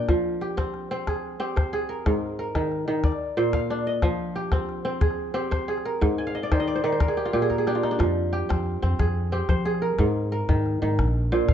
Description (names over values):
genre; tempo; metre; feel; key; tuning
west african traditional, West African string and xylophone music; 121 BPM (dotted quarters); 12/8; straight; F dorian; A4 = 441 Hz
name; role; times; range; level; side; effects
kora; arpeggios; 0.0-11.5 s; Ab2 to Ab5; -24 LUFS; right 1 dB; none
calabash; percussion; 0.1-11.5 s; none; -25 LUFS; left 1 dB; none
upright bass; bass; 8.0-11.5 s; Bb1 to F3; -25 LUFS; equal; none
room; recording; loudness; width
light reverb; dark, warm production, nothing above 8.0 kHz; -22 LUFS; side -9 dB against mid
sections
0.1-11.5 A section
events
kora fill 6.2-8.0; drum fill 7.3-8.0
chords
0.1 Fm; 2.1 Ab5; 3.0 Bb; 4.0 Fm; 6.0 Ab5; 7.0 Bb; 8.0 Fm; 10.0 Ab5; 11.0 N.C.